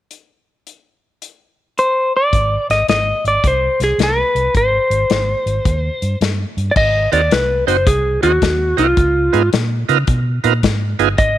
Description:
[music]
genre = electric blues shuffle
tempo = 108 BPM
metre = 4/4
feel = swing 66% on 8ths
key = Ab mixolydian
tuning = A4 = 439 Hz
[part]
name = natural country drum kit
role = drums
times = 0.1-11.4 s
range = crash cymbal, hi-hat, kick drum, snare drum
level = -19 LUFS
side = left 2 dB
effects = none
[part]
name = electric slide guitar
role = melody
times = 1.8-11.4 s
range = F4 to Eb5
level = -15 LUFS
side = equal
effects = none
[part]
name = vintage muted fingered electric bass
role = bass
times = 2.3-11.4 s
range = Gb1 to Db3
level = -19 LUFS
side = equal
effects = none
[part]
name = bright tonewheel organ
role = accompaniment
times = 7.1-11.1 s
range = Cb4 to C5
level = -19 LUFS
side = right 13 dB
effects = slow rotary speaker
[sound]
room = light reverb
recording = 1960s-style stereo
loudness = -13 LUFS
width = side -12 dB against mid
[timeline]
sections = 0.1-2.3 A section; 2.3-6.8 B section; 6.8-11.4 C section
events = none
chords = 0.1 N.C.; 2.3 Ab; 5.6 Eb; 6.8 Ab7; 9.0 Db7

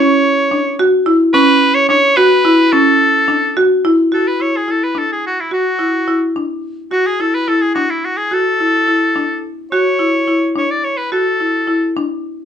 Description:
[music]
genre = contemporary instrumental, contemporary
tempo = 215 BPM (eighths)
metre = 5/8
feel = straight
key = D lydian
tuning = A4 = 440 Hz
[part]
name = bright oboe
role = melody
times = 0.0-11.9 s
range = E4 to D5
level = -14 LUFS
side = equal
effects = none
[part]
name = marimba with hard mallets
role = arpeggios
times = 0.0-12.4 s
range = C#4 to F#4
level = -14 LUFS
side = equal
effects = none
[sound]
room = wet studio reverb, RT60 0.5 s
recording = dark, warm production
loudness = -12 LUFS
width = side -8 dB against mid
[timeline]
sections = 0.0-4.1 A section; 4.1-12.4 B section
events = none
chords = 0.0 Dmaj7; 4.1 Dadd9

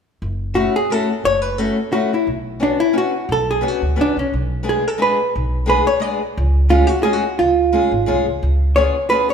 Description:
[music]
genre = musette waltz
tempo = 176 BPM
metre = 3/4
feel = straight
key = F# minor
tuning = A4 = 441 Hz
[part]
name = upright bass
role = bass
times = 0.2-8.9 s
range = F#1 to D2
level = -20 LUFS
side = equal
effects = none
[part]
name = picked old ladder-braced acoustic guitar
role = accompaniment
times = 0.5-9.3 s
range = G#3 to G#4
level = -22 LUFS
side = left 4 dB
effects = none
[part]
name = hollow-body jazz guitar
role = melody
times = 0.6-9.3 s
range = C#4 to D5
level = -17 LUFS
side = right 1 dB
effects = none
[sound]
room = moderate scoring stage reverb, RT60 1.7 s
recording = minimal, uncompressed stereo recording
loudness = -15 LUFS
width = side -7 dB against mid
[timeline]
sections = 0.2-9.3 A section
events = none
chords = 0.2 F#m7; 2.3 Bmadd9; 4.3 G#dim/B; 6.4 C#; 8.4 C#7

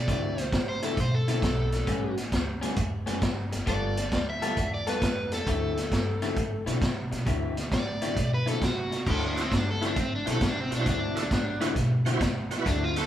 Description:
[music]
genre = electric blues shuffle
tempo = 134 BPM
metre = 4/4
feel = swing 67% on 8ths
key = D mixolydian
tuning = A4 = 440 Hz
[part]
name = overdriven semi-hollow guitar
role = melody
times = 0.0-13.1 s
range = C4 to E5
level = -32 LUFS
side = equal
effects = none
[part]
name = upright bass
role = bass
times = 0.0-13.1 s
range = F#1 to C3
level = -31 LUFS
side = equal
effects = none
[part]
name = electric guitar through a small old amp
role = riff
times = 0.1-13.0 s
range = A2 to A4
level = -33 LUFS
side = left 3 dB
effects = spring reverb
[part]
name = vintage drum kit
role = drums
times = 0.1-13.0 s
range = crash cymbal, hi-hat, kick drum, snare drum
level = -29 LUFS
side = equal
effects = none
[part]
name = bright tonewheel organ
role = accompaniment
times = 9.4-13.0 s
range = E4 to C5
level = -34 LUFS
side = right 5 dB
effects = slow rotary speaker, chorus vibrato
[sound]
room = moderate large studio reverb, RT60 1.2 s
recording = band playing live in one room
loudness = -25 LUFS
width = side -11 dB against mid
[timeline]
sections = 0.0-9.1 A section; 9.1-13.1 B section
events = overdriven electric guitar solo 9.1-13.1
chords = 0.0 D9; 1.9 A9; 3.7 G9; 5.5 D9

